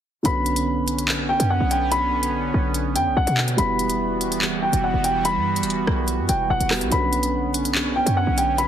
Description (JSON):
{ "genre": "hip hop, drill", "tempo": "144 BPM", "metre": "4/4", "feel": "half-time", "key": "B minor", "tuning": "A4 = 440 Hz", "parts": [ { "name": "dark concert grand piano", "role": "accompaniment", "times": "0.2-8.7 s", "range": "D3 to B4", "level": "-28 LUFS", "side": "right 1 dB", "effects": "low-pass filter" }, { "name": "sweeping resonant pad", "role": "sustained chords", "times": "0.2-8.7 s", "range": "D3 to F#4", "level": "-26 LUFS", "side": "right 4 dB", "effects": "chorus" }, { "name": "drill drum kit", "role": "drums", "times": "0.2-8.7 s", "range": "handclaps, hi-hat, rim click", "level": "-25 LUFS", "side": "equal", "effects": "none" }, { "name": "dark baby grand piano", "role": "melody", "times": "0.3-8.7 s", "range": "F#5 to B5", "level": "-23 LUFS", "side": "left 1 dB", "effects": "low-pass filter, tape echo" }, { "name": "short 808-style bass", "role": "bass", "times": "0.3-8.7 s", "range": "D1 to B2", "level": "-25 LUFS", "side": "equal", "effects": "none" } ], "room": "light reverb", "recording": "heavily compressed radio sound, multiband compression", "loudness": "-19 LUFS", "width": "side -9 dB against mid", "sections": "0.2-8.7 A section", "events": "none", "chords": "0.2 Bmadd9; 3.6 Emadd9; 6.9 Bmadd9", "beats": "| 0.25 0.67 1.08 1.50 | 1.92 2.33 2.75 3.17 | 3.58 4.00 4.42 4.83 | 5.25 5.67 6.08 6.50 | 6.92 7.33 7.75 8.17 | 8.58" }